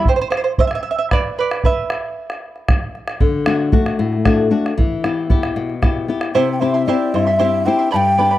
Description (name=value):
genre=andean folk, Andean ensemble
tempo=76 BPM (dotted quarters)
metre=6/8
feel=straight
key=unclear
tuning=A4 = 440 Hz
part: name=charango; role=accompaniment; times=0.0-2.9, 6.3-8.4 s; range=E4 to C6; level=-20 LUFS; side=right 5 dB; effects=none
part: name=flamenco guitar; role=accompaniment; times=0.0-0.1, 3.2-8.4 s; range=G2 to G4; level=-17 LUFS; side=left 4 dB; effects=none
part: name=bombo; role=percussion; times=0.1-6.3 s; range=none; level=-18 LUFS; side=right 1 dB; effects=none
part: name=breathy mellow large quena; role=melody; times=6.3-8.4 s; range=C5 to A5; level=-17 LUFS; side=equal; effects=tape echo
room=small room ambience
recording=dry, close 1970s-style studio recording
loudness=-15 LUFS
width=side -14 dB against mid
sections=0.1-6.4 A section; 6.4-8.4 B section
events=charango solo 0.1-6.4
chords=0.1 Bmadd11; 1.6 N.C.; 3.2 D; 4.8 Em; 6.4 C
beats=| 0.06 0.85 | 1.64 2.42 | 3.21 4.00 | 4.78 5.57 | 6.36 7.14 | 7.93